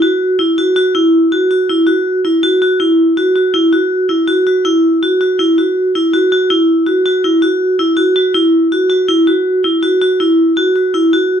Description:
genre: progressive instrumental, progressive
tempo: 162 BPM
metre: 5/4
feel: straight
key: unclear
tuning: A4 = 440 Hz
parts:
  - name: vibraphone with hard mallets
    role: solo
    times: 0.0-11.4 s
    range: E4 to F#4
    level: -10 LUFS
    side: equal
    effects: none
room: moderate studio reverb, RT60 0.6 s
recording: close, detailed microphones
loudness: -10 LUFS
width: side -8 dB against mid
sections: 0.0-11.4 A section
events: none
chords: none

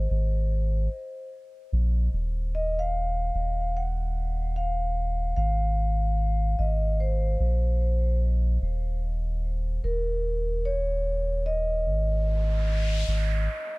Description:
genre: trip hop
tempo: 74 BPM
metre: 4/4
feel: swing 59% on 16ths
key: Eb dorian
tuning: A4 = 442 Hz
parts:
  - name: vibraphone with soft mallets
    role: melody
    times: 0.0-13.8 s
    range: Bb4 to Gb5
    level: -31 LUFS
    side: equal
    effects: vintage 12-bit sampler grit, tape echo
  - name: soft dub sub bass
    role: bass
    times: 0.0-13.5 s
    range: Eb1 to Bb1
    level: -25 LUFS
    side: equal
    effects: none
  - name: noise sweep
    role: sound effects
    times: 12.1-13.8 s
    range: none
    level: -36 LUFS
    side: right 1 dB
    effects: none
room: small room ambience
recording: echo-heavy mix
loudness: -24 LUFS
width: side -24 dB against mid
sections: 0.0-13.8 A section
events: noise sweep 12.1-13.8; break 13.5-13.8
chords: 0.0 Ab; 2.1 Ebmadd9; 5.4 Ab; 8.6 Eb5; 11.9 Ab5

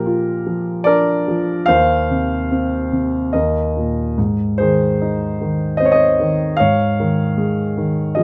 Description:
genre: classical, lyrical solo piano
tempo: 74 BPM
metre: 3/4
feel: rubato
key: Ab major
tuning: A4 = 439 Hz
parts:
  - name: dark grand piano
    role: solo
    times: 0.0-8.2 s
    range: Eb2 to F5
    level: -17 LUFS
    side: equal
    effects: none
room: light reverb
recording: close, detailed microphones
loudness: -17 LUFS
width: mono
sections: 0.0-8.2 A section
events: none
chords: 0.0 Bb; 1.7 Cmadd11/Eb; 3.3 Eb5; 4.2 Ab; 6.6 Dbadd9/Ab

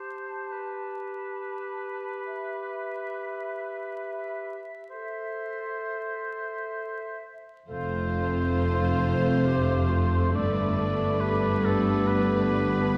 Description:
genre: cinematic, emotional film score for orchestra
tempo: 63-71 BPM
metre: 3/4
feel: rubato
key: unclear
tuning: A4 = 440 Hz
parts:
  - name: clear oboe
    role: second line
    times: 0.0-13.0 s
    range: A4 to D5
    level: -36 LUFS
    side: equal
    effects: none
  - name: dark clarinet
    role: second line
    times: 0.0-13.0 s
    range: F4 to A4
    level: -37 LUFS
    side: equal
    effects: none
  - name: hollow flute section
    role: second line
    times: 0.0-7.3 s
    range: E5 to A5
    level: -41 LUFS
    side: equal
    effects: none
  - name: warm symphonic violin section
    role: melody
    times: 7.7-13.0 s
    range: B4 to C5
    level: -38 LUFS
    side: equal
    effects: none
  - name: warm symphonic violin section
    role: second line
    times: 7.7-12.9 s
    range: D4 to F4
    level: -37 LUFS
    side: equal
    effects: none
  - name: rich symphonic viola section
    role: accompaniment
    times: 7.7-13.0 s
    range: A3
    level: -37 LUFS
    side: equal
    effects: none
  - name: warm French horn section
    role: sustained chords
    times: 7.7-13.0 s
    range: A3 to C4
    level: -33 LUFS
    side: equal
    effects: none
  - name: warm studio double bass section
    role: bass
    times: 7.7-13.0 s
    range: F1 to G1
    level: -32 LUFS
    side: equal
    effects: none
  - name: warm symphonic cello section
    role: bass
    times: 7.7-13.0 s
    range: F2 to G2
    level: -31 LUFS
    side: equal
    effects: none
room: wet scoring stage reverb, RT60 1.6 s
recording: heard from further back in the room, vinyl crackle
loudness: -28 LUFS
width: mono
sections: 0.0-7.7 A section; 7.7-13.0 B section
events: none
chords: 0.0 Gadd9; 2.2 Em/G; 4.9 Am; 7.7 F; 10.3 Gadd9

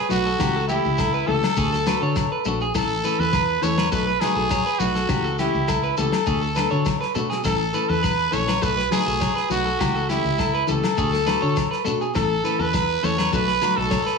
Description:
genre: highlife guitar band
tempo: 102 BPM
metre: 4/4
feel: straight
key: A major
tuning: A4 = 439 Hz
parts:
  - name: growling trumpet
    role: melody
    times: 0.0-14.2 s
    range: E4 to C#5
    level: -24 LUFS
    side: right 2 dB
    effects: none
  - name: electric guitar at the edge of break-up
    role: arpeggios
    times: 0.0-14.2 s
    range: G4 to C#5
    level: -26 LUFS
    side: right 4 dB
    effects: tape echo
  - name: semi-hollow electric guitar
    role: accompaniment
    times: 0.1-14.0 s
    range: E3 to A4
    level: -28 LUFS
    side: left 12 dB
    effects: none
  - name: fingered electric bass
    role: bass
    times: 0.1-14.0 s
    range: A1 to D3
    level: -26 LUFS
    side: equal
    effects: none
  - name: shekere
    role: percussion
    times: 0.1-14.1 s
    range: none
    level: -34 LUFS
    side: left 8 dB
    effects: none
  - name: warm soul drum kit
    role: drums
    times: 0.4-14.1 s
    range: kick drum, snare drum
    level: -28 LUFS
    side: equal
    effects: none
  - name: agogo bells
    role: percussion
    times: 0.4-14.1 s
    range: none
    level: -31 LUFS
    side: left 15 dB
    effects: none
room: light reverb, small room ambience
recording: studio ambience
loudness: -19 LUFS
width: side -4 dB against mid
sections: 0.0-14.2 A section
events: none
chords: 0.4 A7/C#; 1.6 D; 2.7 A; 3.9 B7; 5.1 A7/C#; 6.3 D; 7.5 A; 8.6 B7; 9.8 A7/C#; 11.0 D; 12.2 A; 13.3 B7

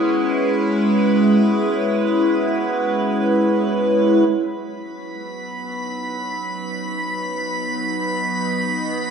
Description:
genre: ambient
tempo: free time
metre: none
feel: none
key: B major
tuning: A4 = 440 Hz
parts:
  - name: evolving wavetable pad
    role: sustained chords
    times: 0.0-9.1 s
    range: F#3 to D#5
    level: -18 LUFS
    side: equal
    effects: chorus, built-in reverb, phaser
  - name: hand-pumped harmonium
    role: drone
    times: 0.0-9.1 s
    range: B3 to F#4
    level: -30 LUFS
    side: right 2 dB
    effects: none
  - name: drifting glass-harmonics texture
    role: texture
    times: 4.9-9.1 s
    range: B5 to B6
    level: -26 LUFS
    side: right 1 dB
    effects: chorus, built-in reverb
room: wet scoring stage reverb, RT60 2.2 s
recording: dark, warm production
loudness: -17 LUFS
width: side -6 dB against mid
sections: 0.0-4.3 A section; 4.3-9.1 B section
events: fade-in on ambient pad 4.3-9.1; fade-in on harmonium 4.3-9.1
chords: 0.0 C#m7; 4.3 B

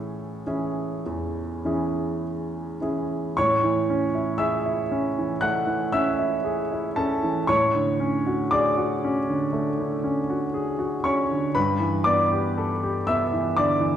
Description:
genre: classical, impressionist solo piano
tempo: 50-61 BPM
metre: 4/4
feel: rubato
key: A major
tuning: A4 = 439 Hz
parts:
  - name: clear baby grand piano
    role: solo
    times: 0.0-14.0 s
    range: E2 to F#6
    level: -22 LUFS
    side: equal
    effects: none
room: wet recital hall reverb, RT60 1.3 s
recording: heard from further back in the room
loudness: -22 LUFS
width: side -10 dB against mid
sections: 0.0-3.4 A section; 3.4-14.0 A section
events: none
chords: 0.0 Amaj7; 7.5 Dmaj7#11/A; 11.6 G69

